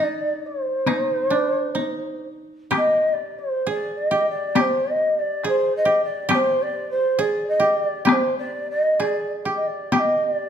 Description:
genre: japanese traditional, Japanese chamber music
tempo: 63-69 BPM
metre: 2/4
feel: rubato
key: unclear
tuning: A4 = 440 Hz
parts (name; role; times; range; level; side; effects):
- mellow hollow shakuhachi; melody; 0.0-10.5 s; C5 to G5; -21 LUFS; equal; none
- koto; second line; 0.0-10.5 s; D4 to Ab4; -26 LUFS; right 2 dB; none
- taiko ensemble; percussion; 0.9-10.1 s; none; -23 LUFS; left 3 dB; none
room: moderate recital hall reverb, RT60 1.6 s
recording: minimal, uncompressed stereo recording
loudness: -19 LUFS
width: side -8 dB against mid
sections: 0.0-2.7 A section; 2.7-10.5 B section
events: none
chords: none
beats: | 0.87 1.77 | 2.72 3.65 | 4.56 5.43 | 6.30 7.19 | 8.08 9.01 | 9.94

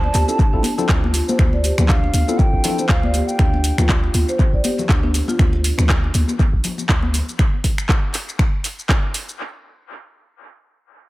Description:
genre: afro house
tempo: 120 BPM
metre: 4/4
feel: swing 57% on 16ths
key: D minor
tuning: A4 = 439 Hz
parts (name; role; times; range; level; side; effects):
- mellow bansuri; melody; 0.0-3.9 s; F5 to A5; -27 LUFS; right 1 dB; tape echo
- marimba with soft mallets; arpeggios; 0.0-5.3 s; D4 to D5; -26 LUFS; right 1 dB; sidechain pumping, tape echo
- warm 808-style bass; bass; 0.0-7.2 s; A1 to D2; -19 LUFS; equal; sidechain pumping
- congas; percussion; 0.0-7.3 s; none; -26 LUFS; left 3 dB; dub echo
- afro-pop drum kit; drums; 0.1-9.4 s; finger snaps, handclaps, hi-hat, shaker; -24 LUFS; equal; dub echo
- tine electric piano; stabs; 0.3-2.8 s; C4 to A4; -27 LUFS; left 3 dB; medium stereo tremolo, sidechain pumping, dub echo
- electronic kick drum; drums; 0.4-9.0 s; none; -17 LUFS; equal; none
room: digital ambience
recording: echo-heavy mix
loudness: -15 LUFS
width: side -18 dB against mid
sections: 0.0-9.4 A section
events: drop 0.0-9.4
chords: 0.0 Dm7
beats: 0.39 0.89 | 1.39 1.89 2.39 2.89 | 3.39 3.89 4.39 4.89 | 5.39 5.89 6.39 6.89 | 7.39 7.89 8.39 8.89

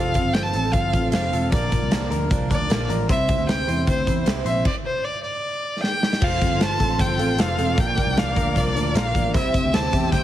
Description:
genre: jangly indie pop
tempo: 153 BPM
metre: 4/4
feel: straight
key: F major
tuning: A4 = 440 Hz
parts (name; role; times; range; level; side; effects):
- warm violin; melody; 0.0-10.2 s; C5 to A5; -25 LUFS; equal; none
- fingerpicked twelve-string acoustic guitar; accompaniment; 0.0-10.2 s; Bb2 to C5; -28 LUFS; right 6 dB; none
- direct-recorded clean electric guitar; arpeggios; 0.0-10.2 s; Bb2 to C5; -29 LUFS; left 6 dB; none
- vintage muted picked electric bass; bass; 0.0-10.2 s; E1 to E2; -26 LUFS; equal; none
- big rock drum kit; drums; 0.1-10.2 s; crash cymbal, hi-hat, kick drum, snare drum; -23 LUFS; equal; none
- dark studio string section; sustained chords; 6.2-10.2 s; A4 to E6; -34 LUFS; left 4 dB; none
room: light reverb, small room ambience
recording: heavily compressed radio sound, multiband compression, lossy compression artefacts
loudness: -19 LUFS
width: side -12 dB against mid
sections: 0.0-6.2 A section; 6.2-10.2 B section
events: stop 4.7-6.2; drum fill 5.8-6.2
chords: 0.0 F; 1.5 Bb; 3.1 C; 4.7 N.C.; 6.2 F; 7.8 Bb; 9.3 C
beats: 0.35 0.74 1.13 | 1.52 1.92 2.31 2.70 | 3.09 3.48 3.87 4.26 | 4.66 5.05 5.44 5.83 | 6.22 6.61 7.00 7.39 | 7.78 8.17 8.56 8.96 | 9.35 9.74 10.13

